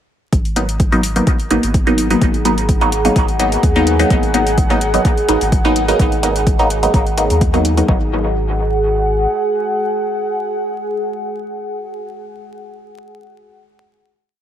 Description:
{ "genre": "dub techno", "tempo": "127 BPM", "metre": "4/4", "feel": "swing 53% on 16ths", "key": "G# minor", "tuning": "A4 = 445 Hz", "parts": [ { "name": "deep dark ambient pad", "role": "sustained chords", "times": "2.0-12.3 s", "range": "G#4 to F#5", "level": "-20 LUFS", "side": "equal", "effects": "chorus, built-in reverb, sidechain pumping" }, { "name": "soft dub sub bass", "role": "bass", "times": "0.3-9.3 s", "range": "G#1 to D#2", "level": "-20 LUFS", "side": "equal", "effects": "sidechain pumping" }, { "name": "electronic hi-hat", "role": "drums", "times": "0.3-7.9 s", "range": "none", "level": "-26 LUFS", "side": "left 1 dB", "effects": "overdrive" }, { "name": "electronic kick drum", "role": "drums", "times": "0.3-8.0 s", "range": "none", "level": "-15 LUFS", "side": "equal", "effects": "overdrive" }, { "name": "filtered dub chord stab", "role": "stabs", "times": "0.6-12.3 s", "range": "F#3 to D#4", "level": "-16 LUFS", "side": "equal", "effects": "phaser, dub echo" } ], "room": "light reverb", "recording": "vinyl crackle", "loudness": "-13 LUFS", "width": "side -10 dB against mid", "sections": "0.3-7.9 groove; 7.9-11.7 final chord", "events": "none", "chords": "0.3 G#m7" }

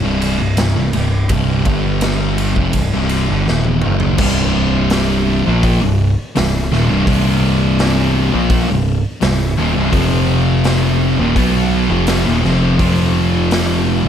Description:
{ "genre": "stoner and doom metal", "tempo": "84 BPM", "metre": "4/4", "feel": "straight", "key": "C minor", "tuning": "A4 = 440 Hz", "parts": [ { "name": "thick fuzz guitar", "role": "riff", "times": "0.0-14.1 s", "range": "C2 to B3", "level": "-18 LUFS", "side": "left 8 dB", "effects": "distortion" }, { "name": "thick fuzz guitar", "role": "riff", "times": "0.0-14.1 s", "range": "C2 to B3", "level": "-18 LUFS", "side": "right 6 dB", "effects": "distortion" }, { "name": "growling picked electric bass", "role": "bass", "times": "0.0-14.1 s", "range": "C1 to B1", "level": "-20 LUFS", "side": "equal", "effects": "overdrive" }, { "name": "raw garage drum kit", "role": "drums", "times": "0.2-13.7 s", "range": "crash cymbal, hi-hat, kick drum, ride cymbal, snare drum, toms", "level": "-20 LUFS", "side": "equal", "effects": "none" }, { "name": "sludgy distorted guitar", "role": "riff", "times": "4.2-14.1 s", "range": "C2 to B3", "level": "-21 LUFS", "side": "equal", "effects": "overdrive" } ], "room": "light reverb, studio reverb", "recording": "none", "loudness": "-12 LUFS", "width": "side -9 dB against mid", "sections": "0.0-4.2 A section; 4.2-14.1 B section", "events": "drum fill 3.5-4.2", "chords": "0.0 C5; 1.7 G5; 2.6 Cm; 9.9 F5" }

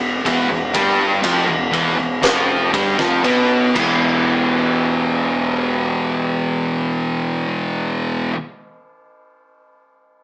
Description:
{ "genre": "stoner and doom metal", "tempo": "58-62 BPM", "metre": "4/4", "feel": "straight", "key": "E phrygian", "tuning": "A4 = 441 Hz", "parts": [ { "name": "overdriven electric guitar", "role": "riff", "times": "0.0-8.4 s", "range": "E2 to G4", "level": "-23 LUFS", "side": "equal", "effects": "none" }, { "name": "thick fuzz guitar", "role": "riff", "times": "0.0-8.3 s", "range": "E2 to B3", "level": "-20 LUFS", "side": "left 1 dB", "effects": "distortion" }, { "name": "thick fuzz guitar", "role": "riff", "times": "0.0-8.3 s", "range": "E2 to B3", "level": "-21 LUFS", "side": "right 1 dB", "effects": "distortion" }, { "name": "growling picked electric bass", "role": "bass", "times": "0.0-8.3 s", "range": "E1 to B1", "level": "-29 LUFS", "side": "equal", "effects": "overdrive" }, { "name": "oversized low-tuned drum kit", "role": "drums", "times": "0.3-4.0 s", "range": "crash cymbal, kick drum, ride cymbal, snare drum", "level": "-21 LUFS", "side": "equal", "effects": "none" } ], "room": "moderate studio reverb, RT60 0.8 s", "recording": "band playing live in one room, small speaker sound", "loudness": "-15 LUFS", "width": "side -22 dB against mid", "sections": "0.0-4.3 A section; 4.3-8.4 B section", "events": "slowing down 0.0-4.3", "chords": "0.0 Em" }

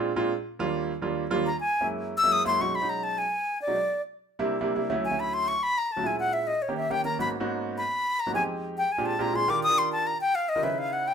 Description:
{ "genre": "jazz", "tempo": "209 BPM", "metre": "4/4", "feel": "straight", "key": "unclear", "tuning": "A4 = 439 Hz", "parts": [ { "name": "warm concert grand piano", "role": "accompaniment", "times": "0.0-11.1 s", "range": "D2 to B4", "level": "-29 LUFS", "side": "right 3 dB", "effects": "none" }, { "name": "breathy bright concert flute", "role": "melody", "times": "1.5-11.1 s", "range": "C#5 to Fb6", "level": "-25 LUFS", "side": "left 2 dB", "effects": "none" } ], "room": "moderate studio reverb, RT60 0.7 s", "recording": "minimal, uncompressed stereo recording", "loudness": "-24 LUFS", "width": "side -7 dB against mid", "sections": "0.0-2.6 A section; 2.6-11.1 A section", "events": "flute solo 0.0-11.1", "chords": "0.3 Ebmaj9; 1.5 Gb9; 2.6 B69; 3.8 C9; 4.9 Dmaj9; 6.0 A#m7b5; 6.6 D#7; 7.2 G#m11; 8.3 Fm9; 8.9 A#13; 9.5 D#maj9; 10.6 C#m7" }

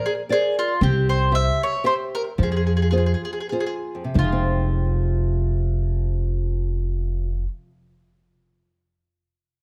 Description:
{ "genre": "italian folk, Italian serenade", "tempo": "95-118 BPM", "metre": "3/4", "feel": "rubato", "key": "F minor", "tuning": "A4 = 440 Hz", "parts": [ { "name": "mandolin", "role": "melody", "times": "0.0-7.5 s", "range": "F4 to E5", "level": "-27 LUFS", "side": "equal", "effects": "slapback echo" }, { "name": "nylon-string guitar", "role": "accompaniment", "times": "0.0-7.6 s", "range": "F2 to E5", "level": "-29 LUFS", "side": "equal", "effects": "none" }, { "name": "upright bass", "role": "bass", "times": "0.8-7.4 s", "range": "F1 to F2", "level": "-23 LUFS", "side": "equal", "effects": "none" } ], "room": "little or no reverb", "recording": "close, detailed microphones", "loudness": "-22 LUFS", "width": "mono", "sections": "0.0-4.2 A section; 4.2-7.9 B section", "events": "slowing down 0.8-4.2", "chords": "0.0 Bbadd9; 0.8 C; 2.4 Fm" }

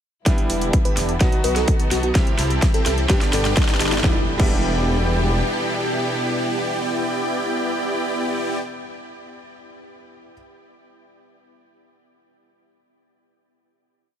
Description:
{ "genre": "EDM, festival progressive house", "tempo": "127 BPM", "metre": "4/4", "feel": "straight", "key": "E minor", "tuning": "A4 = 445 Hz", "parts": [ { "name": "bright concert grand piano", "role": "accompaniment", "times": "0.2-10.3 s", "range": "G2 to G4", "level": "-29 LUFS", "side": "right 2 dB", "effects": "sidechain pumping, ping-pong delay" }, { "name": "warm studio string section", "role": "sustained chords", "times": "0.3-8.4 s", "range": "B2 to G4", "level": "-30 LUFS", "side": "left 1 dB", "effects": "sidechain pumping" }, { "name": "supersaw chords", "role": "riff", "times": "0.3-8.6 s", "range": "B3 to A5", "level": "-25 LUFS", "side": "equal", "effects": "sidechain pumping, low-pass filter, ping-pong delay" }, { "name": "big-room dance drum kit", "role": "drums", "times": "0.3-4.5 s", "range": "crash cymbal, hi-hat, snare drum", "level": "-27 LUFS", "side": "equal", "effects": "overdrive, high-pass filter on snare, high-pass filter on hats, high-pass filter on cymbals" }, { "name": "electronic kick drum", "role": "drums", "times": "0.3-4.5 s", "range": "none", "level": "-18 LUFS", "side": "equal", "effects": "overdrive" }, { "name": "riser and impact", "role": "sound effects", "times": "2.3-8.5 s", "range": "none", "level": "-32 LUFS", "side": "left 1 dB", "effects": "none" }, { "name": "detuned saw bass", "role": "bass", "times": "0.5-5.4 s", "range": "E1 to C2", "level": "-23 LUFS", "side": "equal", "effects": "sidechain pumping" }, { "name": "bell-like FM electric piano", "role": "melody", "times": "0.9-3.8 s", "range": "F#4 to B4", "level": "-29 LUFS", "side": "equal", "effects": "chorus, ping-pong delay" } ], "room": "light reverb, digital ambience", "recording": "none", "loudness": "-18 LUFS", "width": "side -9 dB against mid", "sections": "0.3-4.0 build; 4.0-7.8 final chord", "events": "build-up 0.3-4.0; drum fill 0.3-4.0; filter sweep on supersaw synth 0.3-4.0; riser 2.3-4.0", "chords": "0.3 Em7; 1.2 B; 2.2 C; 3.1 G; 4.0 Em7" }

